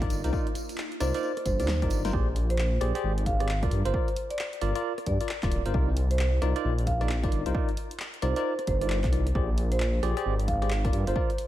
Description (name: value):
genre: UK garage, two-step garage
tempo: 133 BPM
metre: 4/4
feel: swing 62% on 16ths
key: C minor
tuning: A4 = 437 Hz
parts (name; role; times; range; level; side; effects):
- ethereal airy pad; sustained chords; 0.0-2.1 s; Bb3 to F4; -43 LUFS; equal; none
- bell-like tine electric piano; stabs; 0.0-11.3 s; Eb4 to D5; -33 LUFS; left 1 dB; medium stereo tremolo, ping-pong delay
- dark detuned saw bass; bass; 0.0-11.1 s; D1 to G2; -27 LUFS; equal; none
- electronic kick drum; drums; 0.0-11.3 s; none; -30 LUFS; equal; none
- punchy analog drum machine; drums; 0.0-11.5 s; handclaps, hi-hat, rim click, snare drum; -38 LUFS; equal; none
- tambourine; percussion; 0.1-2.1 s; none; -45 LUFS; right 3 dB; none
- marimba with medium mallets; melody; 1.0-11.2 s; C5 to F5; -33 LUFS; right 3 dB; ping-pong delay
room: light reverb, digital ambience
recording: none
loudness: -25 LUFS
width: side -13 dB against mid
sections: 0.0-2.1 A section; 2.1-11.5 B section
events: drum fill 1.7-2.1; drop 2.1-11.5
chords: 0.0 Cm11; 2.1 Bb13; 3.7 Gm7; 5.7 Cm11; 9.4 Bb13; 10.9 Gm7